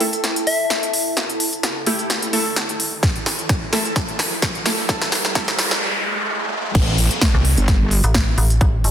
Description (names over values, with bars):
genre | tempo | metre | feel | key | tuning
bass house | 129 BPM | 4/4 | swing 54% on 16ths | unclear | A4 = 441 Hz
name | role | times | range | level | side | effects
orchestra-hit-like synth stab | stabs | 0.0-5.4 s | A3 to A4 | -24 LUFS | right 1 dB | built-in reverb, sidechain pumping, tape echo
big-room dance drum kit | drums | 0.0-8.9 s | crash cymbal, hi-hat, snare drum | -21 LUFS | equal | high-pass filter on snare, high-pass filter on hats, high-pass filter on cymbals, high-pass filter on room
riser, noise sweep and downlifter | sound effects | 2.6-8.9 s | none | -27 LUFS | right 1 dB | none
warbly tape-like pad | texture | 0.0-5.8 s | E4 to A5 | -30 LUFS | right 1 dB | chorus, built-in reverb, sidechain pumping
soft synth bell | melody | 0.5-0.9 s | E5 | -23 LUFS | left 4 dB | chorus, phaser, vintage 12-bit sampler grit, tape echo
electronic kick drum | drums | 3.0-8.7 s | none | -20 LUFS | equal | none
wobble bass | bass | 6.7-8.0 s | G1 to A1 | -18 LUFS | equal | chorus, sidechain pumping
metallic FM bass | bass | 7.3-8.9 s | G1 to C2 | -17 LUFS | equal | tube saturation, sidechain pumping
room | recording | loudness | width
moderate lush hall reverb, RT60 2.1 s | dense, heavily limited modern master, high-pass filter | -16 LUFS | side -10 dB against mid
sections
0.0-6.7 A section; 6.7-8.9 B section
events
build-up 0.0-6.7; drum fill 0.0-5.8; riser 2.6-6.7; noise sweep 4.9-6.7; break 5.8-6.7; drop 6.7-8.9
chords
0.0 A5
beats
0.24 0.70 | 1.17 1.63 2.10 2.56 | 3.03 3.49 3.96 4.42 | 4.89 5.35 5.82 6.28 | 6.75 7.21 7.68 8.14 | 8.61